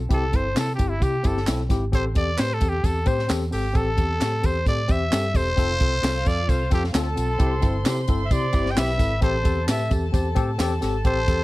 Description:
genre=uptempo 1960s-style soul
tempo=132 BPM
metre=4/4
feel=straight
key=A minor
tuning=A4 = 438 Hz
part: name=vintage muted fingered electric bass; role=bass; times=0.0-11.4 s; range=E1 to C3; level=-26 LUFS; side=equal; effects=none
part: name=growling trumpet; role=melody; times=0.1-11.4 s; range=E4 to G5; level=-26 LUFS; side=equal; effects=none
part: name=tine electric piano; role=accompaniment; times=0.1-11.4 s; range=C4 to C5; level=-28 LUFS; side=left 4 dB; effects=medium stereo tremolo
part: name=compact cocktail drum kit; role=drums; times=0.1-11.4 s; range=hi-hat, kick drum, snare drum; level=-24 LUFS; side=equal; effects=none
part: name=tambourine and handclaps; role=percussion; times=0.1-11.4 s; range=none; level=-37 LUFS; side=right 3 dB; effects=none
part: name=warm studio violin section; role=second line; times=5.6-11.4 s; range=F4 to C6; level=-33 LUFS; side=equal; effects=none
room=light reverb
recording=dark, warm production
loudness=-20 LUFS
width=side -18 dB against mid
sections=0.0-11.4 A section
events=trumpet solo 0.0-11.4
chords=0.1 C; 1.9 Am7; 5.6 F; 7.4 C; 9.2 Am7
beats=| 0.10 0.56 1.02 1.47 | 1.93 2.39 2.84 3.30 | 3.75 4.21 4.67 5.12 | 5.58 6.03 6.49 6.95 | 7.40 7.86 8.31 8.77 | 9.22 9.68 10.14 10.59 | 11.05

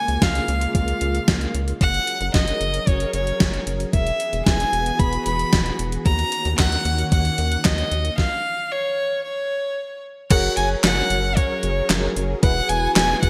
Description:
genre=synth-pop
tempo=113 BPM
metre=4/4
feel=straight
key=F# major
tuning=A4 = 440 Hz
part: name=warm violin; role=melody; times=0.0-13.3 s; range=C#5 to B5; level=-26 LUFS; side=equal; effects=none
part: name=soft string machine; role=sustained chords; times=0.0-13.3 s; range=C#3 to A#4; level=-32 LUFS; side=equal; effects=phaser, ensemble chorus
part: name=rubbery square bass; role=bass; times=0.1-13.3 s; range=E1 to D#2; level=-27 LUFS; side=equal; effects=none
part: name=gated 80s digital drum machine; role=drums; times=0.1-13.3 s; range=crash cymbal, handclaps, hi-hat, kick drum, snare drum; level=-23 LUFS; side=equal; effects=gated reverb, gated reverb snare, overdrive
part: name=funky polysynth comp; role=accompaniment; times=10.3-13.3 s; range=E4 to C#5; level=-29 LUFS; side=equal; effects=chorus
room=moderate plate reverb, RT60 2.7 s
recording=bright 1980s-style digital production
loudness=-21 LUFS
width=mono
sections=0.0-10.3 A section; 10.3-13.3 B section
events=stop 8.2-10.3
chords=0.0 C#6; 1.8 F#add9; 3.9 Eadd9; 6.1 D#m7; 8.2 N.C.; 10.3 F#add9; 12.4 Eadd9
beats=0.22 0.75 1.28 | 1.81 2.34 2.87 3.40 | 3.93 4.46 5.00 5.53 | 6.06 6.59 7.12 7.65 | 8.18 8.71 9.24 9.78 | 10.31 10.84 11.37 11.90 | 12.43 12.96

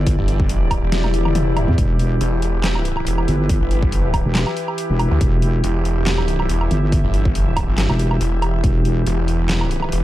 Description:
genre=heavy wobble dubstep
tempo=140 BPM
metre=4/4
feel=swing 54% on 16ths, half-time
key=E minor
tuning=A4 = 443 Hz
part: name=evolving wavetable pad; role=sustained chords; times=0.0-10.0 s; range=E3 to E5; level=-24 LUFS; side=equal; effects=chorus, built-in reverb, sidechain pumping
part: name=wobble bass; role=bass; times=0.0-9.1 s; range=E1 to E2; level=-18 LUFS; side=equal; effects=chorus, overdrive
part: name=dubstep drum kit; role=drums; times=0.1-10.0 s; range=handclaps, hi-hat, snare drum, toms, woodblock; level=-24 LUFS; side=equal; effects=overdrive
part: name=electronic kick drum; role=drums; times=0.1-8.7 s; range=none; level=-19 LUFS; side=equal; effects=none
part: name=snarling distorted saw bass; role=bass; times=0.2-10.0 s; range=E1 to D2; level=-19 LUFS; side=equal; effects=distortion, overdrive
part: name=swell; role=sound effects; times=1.1-1.8 s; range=none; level=-29 LUFS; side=left 5 dB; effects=none
room=digital ambience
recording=dark, warm production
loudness=-16 LUFS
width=side -14 dB against mid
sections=0.0-10.0 A section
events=drum fill 0.9-1.8; swell 1.1-1.8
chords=0.0 Em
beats=| 0.07 0.49 0.92 1.35 | 1.78 2.21 2.64 3.07 | 3.49 3.92 4.35 4.78 | 5.21 5.64 6.07 6.49 | 6.92 7.35 7.78 8.21 | 8.64 9.07 9.49 9.92

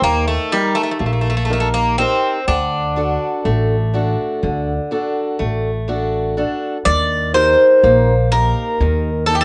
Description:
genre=greek folk, Greek bouzouki band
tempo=123 BPM (eighths)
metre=9/8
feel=straight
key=unclear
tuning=A4 = 440 Hz
part: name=Greek bouzouki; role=melody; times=0.0-9.4 s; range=G3 to D5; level=-18 LUFS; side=equal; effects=none
part: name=picked swing-style acoustic guitar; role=accompaniment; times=0.0-9.4 s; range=D3 to Bb4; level=-23 LUFS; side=equal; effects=none
part: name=upright bass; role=bass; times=0.0-9.4 s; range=A1 to Eb2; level=-22 LUFS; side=equal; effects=none
room=moderate small room reverb, RT60 0.5 s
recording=worn, warbling old tape, cassette tape, warbly pitch drift, nothing above 10.8 kHz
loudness=-17 LUFS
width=mono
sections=0.0-6.9 A section; 6.9-9.4 B section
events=none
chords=0.0 Eb; 2.5 D; 6.9 Eb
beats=0.02 0.52 1.01 1.50 1.99 | 2.47 2.96 3.45 3.94 4.43 4.92 5.40 5.89 6.37 | 6.86 7.34 7.83 8.31 8.80 9.28

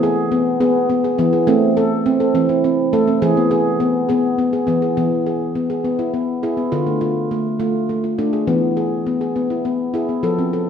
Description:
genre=world meditative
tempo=69 BPM (dotted quarters)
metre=6/8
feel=straight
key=E phrygian dominant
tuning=A4 = 443 Hz
part: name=handpan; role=solo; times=0.0-10.7 s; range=D3 to A4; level=-16 LUFS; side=equal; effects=none
room=wet echo chamber reverb, RT60 2.0 s, small room reverb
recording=none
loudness=-16 LUFS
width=side -7 dB against mid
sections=0.0-5.0 A section; 5.0-10.7 B section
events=none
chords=0.0 E; 1.5 Am; 3.2 E; 6.7 Dm; 8.5 E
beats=0.61 | 1.48 2.35 | 3.22 4.10 | 4.97 5.85 | 6.72 7.60 | 8.48 9.36 | 10.23

